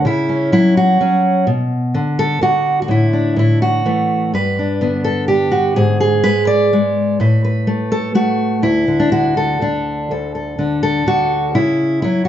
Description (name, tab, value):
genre	folk, solo fingerstyle acoustic guitar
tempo	125 BPM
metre	3/4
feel	rubato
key	D major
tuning	A4 = 440 Hz
part	fingerpicked steel-string acoustic guitar	solo	0.0-12.3 s	D2 to D5	-13 LUFS	equal	none
room	moderate large studio reverb, RT60 1.0 s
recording	dark, warm production, nothing above 7.8 kHz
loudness	-13 LUFS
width	side -10 dB against mid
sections	0.0-10.1 A section; 10.1-12.3 A section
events	none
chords	0.0 F#5/C#; 1.5 Bm; 2.9 Asus4; 3.4 A5; 4.3 G; 5.8 G#dim; 7.2 Asus2; 8.6 N.C.; 10.1 D; 11.6 F#5/C#